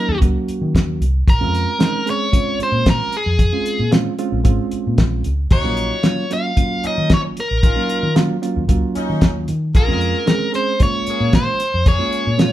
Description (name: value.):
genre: straight-eighth soul blues.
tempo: 113 BPM.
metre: 4/4.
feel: straight.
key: Bb minor.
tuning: A4 = 444 Hz.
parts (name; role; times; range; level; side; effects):
biting overdriven guitar; melody; 0.0-12.5 s; Ab4 to F5; -20 LUFS; equal; none.
bright reed electric piano; accompaniment; 0.0-12.5 s; Gb3 to Ab4; -23 LUFS; right 4 dB; none.
vintage muted fingered electric bass; bass; 0.1-12.5 s; Ab1 to Eb3; -20 LUFS; equal; none.
cloth-damped thuddy drum kit; drums; 0.2-12.5 s; hi-hat, kick drum, snare drum; -16 LUFS; equal; none.
bright horn section; sustained chords; 5.5-12.4 s; Gb3 to Ab4; -27 LUFS; left 2 dB; none.
room: light reverb.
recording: band playing live in one room.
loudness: -15 LUFS.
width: side -13 dB against mid.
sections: 0.0-12.5 A section.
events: none.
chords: 0.0 Ebm7; 1.3 Bbm7; 5.5 Ebm7; 9.7 Bbm7.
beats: 0.22 0.75 | 1.28 1.81 2.34 2.87 | 3.40 3.92 4.45 4.98 | 5.51 6.04 6.57 7.10 | 7.63 8.16 8.69 9.22 | 9.75 10.28 10.80 11.34 | 11.86 12.39.